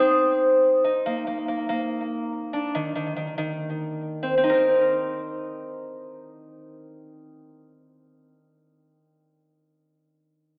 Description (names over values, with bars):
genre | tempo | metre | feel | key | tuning
hip hop | 142 BPM | 4/4 | half-time | C minor | A4 = 439 Hz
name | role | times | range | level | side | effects
concert harp | arpeggios | 0.0-8.4 s | Eb3 to Bb4 | -25 LUFS | equal | analog delay
room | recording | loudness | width
wet lush hall reverb, RT60 1.8 s, digital ambience | dreamy mix soaked in reverb, telephone sound | -24 LUFS | mono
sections
0.0-4.4 A section; 4.4-7.8 B section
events
none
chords
0.0 Cm; 1.1 Bb; 2.7 Cm/Eb; 4.4 Cm7